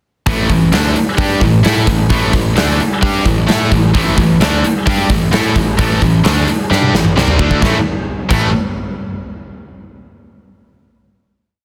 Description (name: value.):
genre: hard rock.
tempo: 131 BPM.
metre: 4/4.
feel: straight.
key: A minor.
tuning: A4 = 440 Hz.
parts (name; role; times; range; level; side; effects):
high-gain distorted guitar; riff; 0.3-8.5 s; A2 to A4; -16 LUFS; equal; distortion.
modern bright picked electric bass; bass; 0.3-8.5 s; A1 to A2; -19 LUFS; equal; none.
huge arena drum kit; drums; 0.3-8.4 s; crash cymbal, hi-hat, kick drum, snare drum, toms; -18 LUFS; equal; none.
room: small room ambience.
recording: dense, heavily limited modern master.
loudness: -13 LUFS.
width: mono.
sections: 0.3-7.6 riff; 7.6-9.4 final chord.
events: drum fill 6.7-7.6.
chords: 0.3 A5.